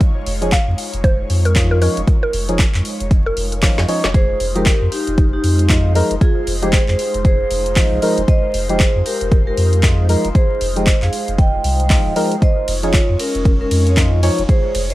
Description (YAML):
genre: deep house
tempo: 116 BPM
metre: 4/4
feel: swing 60% on 16ths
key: F minor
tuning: A4 = 440 Hz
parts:
  - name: airy breathy pad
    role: sustained chords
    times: 0.0-14.9 s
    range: Ab3 to Db5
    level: -29 LUFS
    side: left 1 dB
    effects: chorus, phaser, sidechain pumping
  - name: deep house drum kit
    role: drums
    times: 0.0-14.9 s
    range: handclaps, hi-hat, ride cymbal, snare drum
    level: -23 LUFS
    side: equal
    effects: studio reverb
  - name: electronic kick drum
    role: drums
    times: 0.0-14.6 s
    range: none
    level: -14 LUFS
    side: equal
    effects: studio reverb
  - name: warm sub bass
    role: bass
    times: 0.3-14.9 s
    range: Eb1 to F2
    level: -18 LUFS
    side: equal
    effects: sidechain pumping
  - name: percussive organ stab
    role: stabs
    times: 0.4-14.4 s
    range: F3 to Db5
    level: -21 LUFS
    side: equal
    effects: analog chorus, sidechain pumping, tape echo
  - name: mallet-like synth pluck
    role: melody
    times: 0.5-4.0 s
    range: Bb4 to F5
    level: -23 LUFS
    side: equal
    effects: chorus, analog delay
  - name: vibraphone with medium hard mallets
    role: melody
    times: 4.1-14.9 s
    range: Db4 to G5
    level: -21 LUFS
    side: right 1 dB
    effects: tape echo
room: little or no reverb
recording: dry, gritty hardware recording, vinyl crackle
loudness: -13 LUFS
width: side -16 dB against mid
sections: 0.0-14.9 A section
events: drum fill 3.6-4.1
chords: 0.0 Dbadd9/F; 4.1 Fm9; 12.4 Dbadd9/F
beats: | 0.01 0.52 1.04 1.56 | 2.08 2.59 3.11 3.63 | 4.14 4.66 5.18 5.70 | 6.21 6.73 7.25 7.76 | 8.28 8.80 9.32 9.83 | 10.35 10.87 11.38 11.90 | 12.42 12.94 13.45 13.97 | 14.49